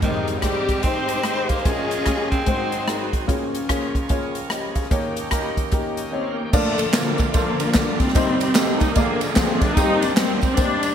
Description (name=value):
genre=uptempo gospel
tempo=148 BPM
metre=4/4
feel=swing 62% on 8ths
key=Ab major, Bb major from 6.5 s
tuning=A4 = 440 Hz
part: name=breathy tenor saxophone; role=melody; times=0.0-3.1 s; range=Eb3 to C4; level=-27 LUFS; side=right 4 dB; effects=digital delay
part: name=warm studio string section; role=melody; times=0.0-3.2, 6.1-10.9 s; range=D3 to C5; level=-23 LUFS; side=left 1 dB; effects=none
part: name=warm upright piano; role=accompaniment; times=0.0-10.9 s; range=Ab1 to F5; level=-25 LUFS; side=left 3 dB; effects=analog chorus
part: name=bright tonewheel organ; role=sustained chords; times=0.0-10.9 s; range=D3 to G5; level=-31 LUFS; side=right 4 dB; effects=slow rotary speaker, overdrive
part: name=swinging big-band drum kit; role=drums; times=0.0-10.9 s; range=crash cymbal, hi-hat, kick drum, ride cymbal, rim click, snare drum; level=-22 LUFS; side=equal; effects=gated reverb
part: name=tambourine and handclaps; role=percussion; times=6.5-10.9 s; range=none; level=-31 LUFS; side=right 6 dB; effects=none
room=light reverb, small room ambience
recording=bright 1980s-style digital production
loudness=-18 LUFS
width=side -8 dB against mid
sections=0.0-6.5 A section; 6.5-10.9 B section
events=tonewheel organ fill 5.7-6.5; break 6.1-6.5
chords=0.0 Abmaj7; 1.7 Bbm7; 2.5 Ab7; 3.3 Db6; 4.9 Eb7; 6.5 Bbmaj7; 8.2 Cm7; 9.0 Bb7; 9.8 Eb6